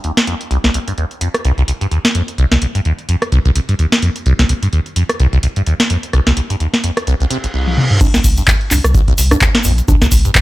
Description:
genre	acid house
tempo	128 BPM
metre	4/4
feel	swing 57% on 16ths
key	C minor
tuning	A4 = 440 Hz
part	liquid acid bass	riff	0.0-10.4 s	Bb1 to C3	-15 LUFS	equal	phaser, tube saturation, wide subtle chorus
part	booming analog drum machine	drums	0.0-10.4 s	congas, crash cymbal, handclaps, hi-hat, rim click, snare drum, toms	-16 LUFS	equal	small room ambience
part	reverse cymbal	sound effects	7.3-8.0 s	none	-22 LUFS	right 1 dB	none
part	electronic kick drum	drums	8.0-10.4 s	none	-13 LUFS	equal	small room ambience
part	egg shaker	percussion	8.0-10.4 s	none	-24 LUFS	left 2 dB	none
part	warm sub bass	bass	8.2-10.3 s	Bb1 to C2	-14 LUFS	equal	sidechain pumping
room	digital ambience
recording	none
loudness	-12 LUFS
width	side -18 dB against mid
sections	0.0-8.0 A section; 8.0-10.4 B section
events	reverse cymbal 7.3-8.0; drum fill 7.7-8.0; drop 8.0-10.4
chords	0.0 Cm; 8.0 N.C.

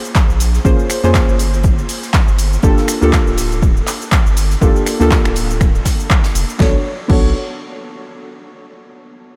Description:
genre	deep house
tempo	121 BPM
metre	4/4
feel	swing 57% on 16ths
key	unclear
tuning	A4 = 442 Hz
part	deep mellow chord stab	stabs	0.0-7.3 s	A#3 to C#5	-22 LUFS	equal	chorus, sidechain pumping, analog delay
part	jazz brush drum kit	drums	0.0-6.6 s	hi-hat, snare drum	-36 LUFS	equal	none
part	deep house drum kit	drums	0.1-7.2 s	cabasa, crash cymbal, finger snaps, handclaps, hi-hat, snare drum	-24 LUFS	equal	overdrive, small room reverb
part	electronic kick drum	drums	0.2-7.2 s	none	-16 LUFS	equal	overdrive, small room reverb
part	round analog bass	bass	0.3-7.3 s	D1 to E#2	-19 LUFS	equal	sidechain pumping
room	light reverb, digital ambience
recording	none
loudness	-14 LUFS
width	mono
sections	0.0-6.6 A section; 6.6-8.6 B section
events	drop 0.0-6.6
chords	0.0 A#m7; 1.4 Gm7; 6.6 Bm7

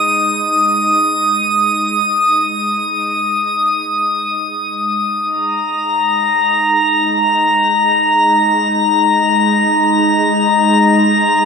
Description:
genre	ambient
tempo	free time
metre	none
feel	none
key	unclear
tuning	A4 = 440 Hz
part	organ-like drone	drone	0.0-11.5 s	G#3 to D#4	-19 LUFS	right 1 dB	ensemble chorus, built-in reverb
part	drifting glass-harmonics texture	texture	0.0-11.5 s	A#5 to D#6	-12 LUFS	left 1 dB	chorus, built-in reverb
room	wet cathedral reverb, RT60 5.5 s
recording	in a vast, echoing space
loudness	-12 LUFS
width	side -5 dB against mid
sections	0.0-5.3 A section; 5.3-11.5 B section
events	fade-out on synth drone 0.0-5.3; fade-in on synth drone 5.3-11.5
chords	0.0 G#5

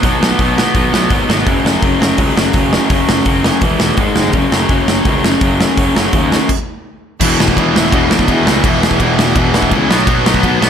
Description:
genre	punk rock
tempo	167 BPM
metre	4/4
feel	straight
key	unclear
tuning	A4 = 437 Hz
part	distorted electric guitar	riff	0.0-10.7 s	E2 to B3	-16 LUFS	left 11 dB	distortion
part	overdriven semi-hollow guitar	riff	0.0-10.7 s	E2 to B3	-18 LUFS	right 11 dB	none
part	fuzz picked electric bass	bass	0.0-10.7 s	E1 to E2	-18 LUFS	equal	overdrive
part	big rock drum kit	drums	0.0-10.7 s	crash cymbal, hi-hat, kick drum, ride cymbal, snare drum	-15 LUFS	equal	none
part	high-gain distorted guitar	riff	7.2-10.7 s	E2 to B3	-17 LUFS	equal	distortion
room	little or no reverb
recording	none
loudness	-10 LUFS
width	side -8 dB against mid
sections	0.0-7.2 A section; 7.2-10.7 B section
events	stop 6.5-7.2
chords	0.0 B5; 1.5 F#5; 3.6 E5; 4.0 G#5; 4.3 F#5; 6.5 N.C.; 7.2 E5; 9.9 B5

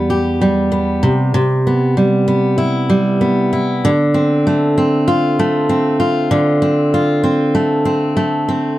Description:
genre	pop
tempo	97 BPM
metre	4/4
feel	swing 55% on 16ths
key	unclear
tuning	A4 = 440 Hz
part	picked steel-string acoustic guitar	solo	0.0-8.8 s	E2 to G4	-13 LUFS	equal	none
room	light reverb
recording	dark, warm production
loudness	-12 LUFS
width	side -15 dB against mid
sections	0.0-6.3 A section; 6.3-8.8 B section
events	none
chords	0.0 Em; 1.0 Cmaj7; 3.8 Dm7

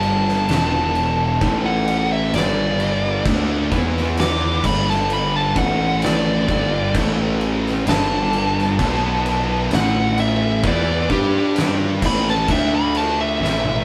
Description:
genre	stoner and doom metal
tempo	65 BPM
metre	4/4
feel	straight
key	unclear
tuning	A4 = 438 Hz
part	fuzz lead guitar	melody	0.0-13.8 s	G4 to D6	-24 LUFS	equal	distortion
part	thick fuzz guitar	riff	0.0-13.8 s	E2 to G4	-31 LUFS	equal	none
part	thick fuzz guitar	riff	0.0-13.8 s	E2 to G4	-27 LUFS	equal	distortion
part	thick fuzz guitar	riff	0.0-13.8 s	E2 to G4	-30 LUFS	equal	distortion
part	fuzz picked electric bass	bass	0.0-13.8 s	E1 to G2	-25 LUFS	equal	overdrive
part	oversized low-tuned drum kit	drums	0.0-13.8 s	crash cymbal, kick drum, snare drum, toms	-26 LUFS	equal	none
room	moderate large studio reverb, RT60 1.0 s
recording	band playing live in one room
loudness	-19 LUFS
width	mono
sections	0.0-13.8 A section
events	lead electric guitar solo 0.0-13.8; drum fill 13.4-13.8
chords	0.5 E5; 1.4 A5; 2.3 G5; 3.7 E5; 4.6 G5; 5.6 A5; 6.5 G5; 6.9 A5; 7.9 G5; 8.8 B5; 9.7 A5; 11.1 G5; 12.0 A5; 12.5 D5

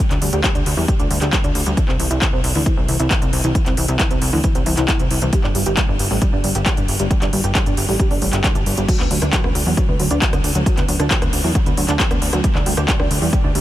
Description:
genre	uplifting trance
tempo	135 BPM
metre	4/4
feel	straight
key	G major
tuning	A4 = 439 Hz
part	analog pluck	arpeggios	0.0-13.6 s	E3 to G4	-23 LUFS	right 1 dB	lush chorus, sidechain pumping, tape echo
part	techno drum kit	drums	0.0-13.6 s	crash cymbal, handclaps, hi-hat, rim click	-22 LUFS	equal	overdrive, sidechain pumping on hats, sidechain pumping on cymbals
part	plucky analog bass	bass	0.1-13.6 s	G1 to E2	-20 LUFS	equal	sidechain pumping
part	electronic kick drum	drums	0.4-13.4 s	none	-19 LUFS	equal	overdrive
room	light reverb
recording	none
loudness	-15 LUFS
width	side -14 dB against mid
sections	0.0-13.6 A section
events	filter sweep on synth pluck 0.0-13.6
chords	0.0 G5/D; 1.8 C; 5.3 G5; 8.9 D6; 12.4 G5/D

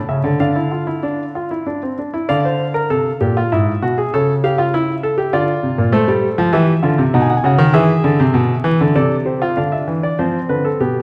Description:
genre	classical, baroque-style 3-part fugue for grand piano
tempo	98 BPM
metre	3/4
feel	straight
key	D minor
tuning	A4 = 436 Hz
part	warm grand piano	solo	0.1-11.0 s	G#2 to G#5	-16 LUFS	equal	none
room	wet recital hall reverb, RT60 1.7 s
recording	vinyl crackle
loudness	-16 LUFS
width	mono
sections	0.0-2.3 A section; 2.3-9.6 B section; 9.6-11.0 A section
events	none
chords	0.4 Dm; 3.5 E/G#; 4.1 A/C#; 5.3 Dm; 5.9 Am; 7.1 B; 7.7 E; 9.0 Am/C; 9.6 Dm

